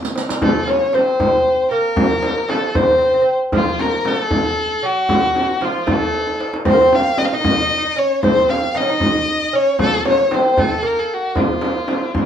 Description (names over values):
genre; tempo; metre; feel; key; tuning
Persian modal ensemble; 77 BPM (dotted quarters); 6/8; straight; F dastgah homayun; A4 = 435 Hz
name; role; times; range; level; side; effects
tombak; percussion; 0.0-12.3 s; none; -24 LUFS; right 1 dB; none
warm violin; melody; 0.4-12.3 s; F4 to F5; -17 LUFS; left 1 dB; none
lute; second line; 0.4-12.3 s; F3 to Eb4; -23 LUFS; right 4 dB; none
frame drum; percussion; 0.4-12.3 s; none; -20 LUFS; left 1 dB; none
room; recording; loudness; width
wet studio reverb, RT60 0.6 s; small room ambience; -14 LUFS; side -9 dB against mid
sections
0.4-12.3 A section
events
drum fill 0.0-0.4, 6.1-6.7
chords
none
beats
| 0.42 1.20 | 1.98 2.76 | 3.54 4.32 | 5.10 5.88 | 6.66 7.44 | 8.22 9.00 | 9.79 10.57 | 11.35 12.14